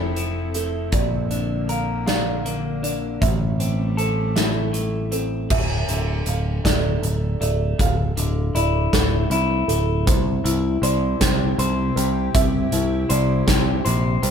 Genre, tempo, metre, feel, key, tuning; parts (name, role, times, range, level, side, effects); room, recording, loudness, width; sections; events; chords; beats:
post-rock; 53 BPM (dotted quarters); 6/8; straight; D minor; A4 = 440 Hz
evolving wavetable pad; sustained chords; 0.0-5.5, 10.1-14.3 s; C3 to A4; -31 LUFS; left 2 dB; chorus, built-in reverb
electric guitar through a small old amp; arpeggios; 0.0-14.3 s; D2 to C5; -26 LUFS; left 4 dB
felt-muted upright piano; arpeggios; 0.0-14.3 s; A4 to F5; -29 LUFS; right 6 dB
picked electric bass; bass; 0.0-14.3 s; D1 to C2; -22 LUFS; right 1 dB
big rock drum kit; drums; 0.2-14.3 s; crash cymbal, hi-hat, kick drum, snare drum; -23 LUFS; equal
moderate studio reverb, RT60 0.7 s; band playing live in one room; -19 LUFS; side -7 dB against mid
0.0-5.5 A section; 5.5-14.3 B section
0.0 Fmaj7; 0.9 Bbadd9; 3.2 Am7; 5.5 Dmadd9; 10.1 C
| 0.93 2.08 | 3.22 4.37 | 5.51 6.65 | 7.79 8.93 | 10.07 11.21 | 12.34 13.48